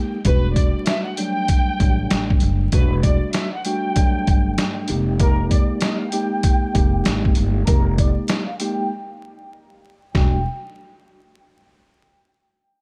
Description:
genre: hip hop, boom-bap hip-hop.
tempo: 97 BPM.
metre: 4/4.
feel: swing 63% on 16ths.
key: unclear.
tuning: A4 = 443 Hz.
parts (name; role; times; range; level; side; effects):
mellow tine electric piano; accompaniment; 0.0-10.4 s; F#3 to G4; -27 LUFS; equal; high-pass filter, low-pass filter.
trip hop sampler-style drum kit; drums; 0.2-10.3 s; hi-hat, kick drum, snare drum; -21 LUFS; equal; none.
warm studio violin section; melody; 0.3-10.4 s; Bb4 to G5; -30 LUFS; equal; high-pass filter, low-pass filter, tape echo.
upright bass; bass; 0.3-10.4 s; E1 to A1; -24 LUFS; equal; none.
room: light reverb, studio reverb.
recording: vinyl crackle.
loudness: -19 LUFS.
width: mono.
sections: 0.3-10.1 A section; 10.1-12.6 B section.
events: break 0.0, 8.9-10.1; filter sweep 0.3-10.1.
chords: 0.3 Em11; 4.9 Fm11; 10.1 Em11.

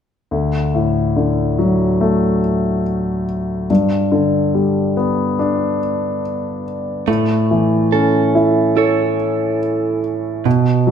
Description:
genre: pop.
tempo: 71 BPM.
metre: 4/4.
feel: straight.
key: D major.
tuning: A4 = 442 Hz.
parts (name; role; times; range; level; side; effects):
warm concert grand piano; accompaniment; 0.3-10.9 s; D2 to A4; -15 LUFS; left 1 dB; none.
direct-recorded clean electric guitar; arpeggios; 7.1-10.9 s; B2 to C#5; -17 LUFS; right 7 dB; none.
room: wet large studio reverb, RT60 1.1 s.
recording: band playing live in one room.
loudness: -15 LUFS.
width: side -8 dB against mid.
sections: 0.3-10.9 A section.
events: none.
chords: 0.3 D; 3.7 G; 7.1 A.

